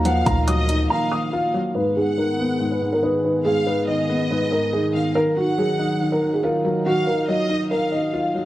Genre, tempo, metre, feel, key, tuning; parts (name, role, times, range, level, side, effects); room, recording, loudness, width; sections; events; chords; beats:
hip hop, trap; 141 BPM; 4/4; half-time; A4 = 440 Hz
felt-muted upright piano; melody; 0.0-8.5 s; Gb4 to Eb6; -22 LUFS; right 1 dB; low-pass filter
dark baby grand piano; accompaniment; 0.0-8.5 s; Ab2 to F4; -23 LUFS; left 2 dB; low-pass filter
warm analog pad; sustained chords; 0.0-8.5 s; Eb3 to Ab4; -28 LUFS; right 2 dB; chorus, low-pass filter
long sustained 808-style bass; bass; 0.0-0.9 s; D2 to Eb2; -21 LUFS; equal
warm studio violin section; second line; 0.1-8.1 s; Eb5 to Gb5; -29 LUFS; right 1 dB; ping-pong delay
trap drum kit; drums; 0.1-0.8 s; hi-hat, kick drum; -24 LUFS; equal; overdrive
light reverb, small room ambience; worn, warbling old tape, cassette tape, warbly pitch drift; -18 LUFS; side -14 dB against mid
0.0-1.8 A section; 1.8-8.5 B section
break 0.9-1.8; filter sweep 1.8-8.5
0.0 Ebmadd9; 1.8 Abm; 5.2 Ebmadd9
| 0.05 0.48 0.90 1.33 | 1.75 2.18 2.60 3.03 | 3.46 3.88 4.31 4.73 | 5.16 5.58 6.01 6.43 | 6.86 7.29 7.71 8.14